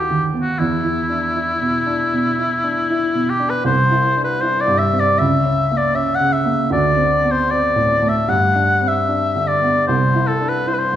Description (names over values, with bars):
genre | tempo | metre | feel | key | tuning
classical, romantic duo for oboe and grand piano | 78 BPM | 4/4 | rubato | unclear | A4 = 440 Hz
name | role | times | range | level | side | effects
warm oboe | melody | 0.0-11.0 s | E4 to F#5 | -17 LUFS | left 2 dB | none
dark baby grand piano | accompaniment | 0.0-11.0 s | C2 to F#4 | -19 LUFS | right 2 dB | none
room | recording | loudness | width
wet recital hall reverb, RT60 1.3 s | recorded in a church or concert hall | -15 LUFS | side -11 dB against mid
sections
0.0-11.0 A section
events
none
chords
0.0 B/D#; 0.6 E5; 3.7 C; 5.2 C#m6; 6.7 D5; 8.3 G; 9.9 C